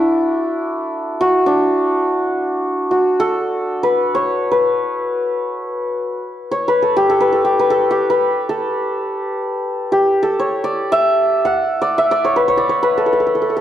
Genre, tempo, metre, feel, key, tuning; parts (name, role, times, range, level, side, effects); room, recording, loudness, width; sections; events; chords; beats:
indian classical; free time; A4 = 441 Hz
santur; solo; 0.0-13.6 s; D4 to F#5; -15 LUFS; equal
moderate recital hall reverb, RT60 1.5 s; dark, warm production; -15 LUFS; side -11 dB against mid
0.0-2.5 A section; 2.5-13.6 A section
free time